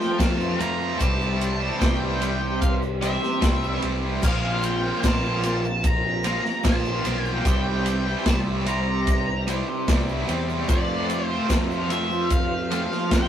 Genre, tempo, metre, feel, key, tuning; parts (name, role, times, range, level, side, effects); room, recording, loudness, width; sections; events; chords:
psychedelic rock; 74 BPM; 4/4; straight; C mixolydian; A4 = 440 Hz
octave-fuzz lead guitar; melody; 0.0-13.3 s; D5 to Bb5; -29 LUFS; left 1 dB; distortion
soft string machine; sustained chords; 0.0-13.3 s; E3 to C5; -32 LUFS; equal; phaser, ensemble chorus
cranked stack guitar; riff; 0.0-13.3 s; Bb2 to F4; -26 LUFS; equal; overdrive, tremolo
vintage drum kit; drums; 0.0-13.3 s; crash cymbal, kick drum, ride cymbal, snare drum; -25 LUFS; equal
growling picked electric bass; bass; 0.2-13.3 s; Bb1 to F2; -28 LUFS; equal; overdrive
tube shaker; percussion; 0.2-13.3 s; -43 LUFS; right 6 dB
moderate small room reverb, RT60 0.6 s; rough rehearsal-room recording; -21 LUFS; side -10 dB against mid
0.0-13.3 A section
0.0 F; 1.0 C; 4.2 Bbsus2; 7.5 C; 10.7 F